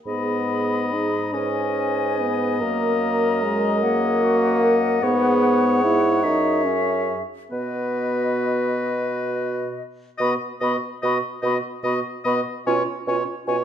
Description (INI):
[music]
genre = classical, slow romantic movement for wind quintet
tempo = 44-50 BPM (dotted quarters)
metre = 6/8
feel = rubato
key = B major from 5.0 s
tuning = A4 = 440 Hz
[part]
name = concert flute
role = melody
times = 0.0-13.6 s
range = D#5 to B5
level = -28 LUFS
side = left 8 dB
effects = none
[part]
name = clear oboe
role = second line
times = 0.1-13.6 s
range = B4 to D#5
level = -27 LUFS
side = left 2 dB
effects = none
[part]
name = clear French horn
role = accompaniment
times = 0.1-13.6 s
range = G#3 to E4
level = -24 LUFS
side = left 1 dB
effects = none
[part]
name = mellow clarinet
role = accompaniment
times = 0.1-13.6 s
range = E#4 to B4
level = -29 LUFS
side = right 7 dB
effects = none
[part]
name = dark bassoon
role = bass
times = 0.1-13.6 s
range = F#2 to B2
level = -25 LUFS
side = right 2 dB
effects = none
[sound]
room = moderate recital hall reverb, RT60 1.5 s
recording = minimal, uncompressed stereo recording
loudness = -19 LUFS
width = side -9 dB against mid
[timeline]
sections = 0.0-10.2 A section; 10.2-13.6 B section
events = none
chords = 0.1 G#m; 2.6 D#m/F#; 5.0 G#m; 6.2 F#sus2; 7.5 B; 12.7 C#7/B